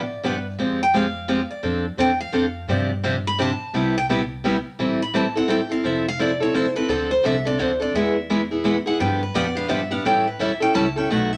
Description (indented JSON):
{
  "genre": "acoustic string swing (jazz manouche)",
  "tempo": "172 BPM",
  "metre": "3/4",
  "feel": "swing 61% on 8ths",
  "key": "C major, A minor from 4.8 s",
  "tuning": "A4 = 438 Hz",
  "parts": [
    { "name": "picked steel-string acoustic guitar", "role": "melody", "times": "0.0-11.4 s", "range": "A4 to B5", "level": "-27 LUFS", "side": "equal", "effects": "none" },
    { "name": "upright bass", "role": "bass", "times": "0.0-11.4 s", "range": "F1 to A2", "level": "-33 LUFS", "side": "equal", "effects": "none" },
    { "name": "picked steel-string acoustic guitar", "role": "accompaniment", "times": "0.2-11.3 s", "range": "B2 to A4", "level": "-24 LUFS", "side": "equal", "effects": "none" }
  ],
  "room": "moderate studio reverb, RT60 0.7 s",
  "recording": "none",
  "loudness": "-22 LUFS",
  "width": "mono",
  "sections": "0.0-4.8 A section; 4.8-11.4 A section",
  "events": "steel-string acoustic guitar solo 0.0-11.4",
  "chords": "0.0 G7; 0.6 Fmadd9; 1.6 F6; 2.7 G9sus4; 3.7 Cmaj7; 4.8 Am7; 5.8 Fmaj7; 6.9 Dm7; 7.9 E; 9.0 G7; 10.0 A7",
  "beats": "0.24 | 0.59 0.94 1.29 | 1.64 1.99 2.34 | 2.69 3.04 3.39 | 3.74 4.09 4.44 | 4.79 5.14 5.49 | 5.84 6.19 6.54 | 6.89 7.24 7.59 | 7.94 8.29 8.64 | 8.99 9.34 9.69 | 10.04 10.39 10.74 | 11.09"
}